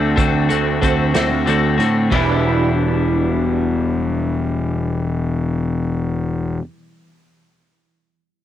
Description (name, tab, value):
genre	indie rock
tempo	62 BPM (dotted quarters)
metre	6/8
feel	straight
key	E minor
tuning	A4 = 440 Hz
part	electric guitar through a small old amp	riff	0.0-6.6 s	D3 to B4	-23 LUFS	right 8 dB	ensemble chorus, cassette tape, analog delay
part	twelve-string electric guitar	riff	0.0-6.6 s	E2 to F#4	-20 LUFS	left 6 dB	cassette tape
part	fuzz picked electric bass	bass	0.0-6.6 s	E1 to A2	-20 LUFS	right 1 dB	overdrive
part	unplugged drum kit	drums	0.2-2.3 s	hi-hat, kick drum, ride cymbal, snare drum	-23 LUFS	right 1 dB	none
room	studio reverb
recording	home recording on cassette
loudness	-16 LUFS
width	side -11 dB against mid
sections	0.0-2.1 A section; 2.1-6.0 B section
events	none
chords	0.0 D7; 2.1 Em7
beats	| 0.17 1.15 | 2.12 3.09 | 4.07 5.04